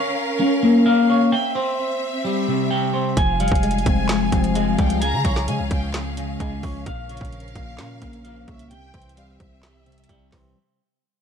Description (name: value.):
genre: hip hop, trap.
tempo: 130 BPM.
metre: 4/4.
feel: half-time.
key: unclear.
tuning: A4 = 442 Hz.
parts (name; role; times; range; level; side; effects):
clear symphonic string section; sustained chords; 0.0-10.5 s; F3 to F5; -29 LUFS; equal; none.
clean electric guitar; arpeggios; 0.0-10.6 s; C3 to Ab5; -20 LUFS; left 1 dB; low-pass filter, digital delay.
tine electric piano; accompaniment; 3.2-10.6 s; Bb2 to Db4; -27 LUFS; left 4 dB; ensemble chorus, low-pass filter.
distorted 808-style bass; bass; 3.2-10.5 s; F1 to Db3; -27 LUFS; right 1 dB; distortion.
trap drum kit; drums; 3.2-10.4 s; handclaps, hi-hat, kick drum, snare drum; -24 LUFS; right 1 dB; vintage 12-bit sampler grit.
warm studio violin section; second line; 3.4-10.5 s; E5 to Bb5; -31 LUFS; equal; digital delay.
room: light reverb.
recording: none.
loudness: -18 LUFS.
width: side -7 dB against mid.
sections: 0.0-10.6 A section.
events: fade-out 0.0-10.6.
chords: 0.0 Bbm; 1.3 C; 3.2 Fmadd9; 5.0 Db; 6.9 Bbm; 8.7 C.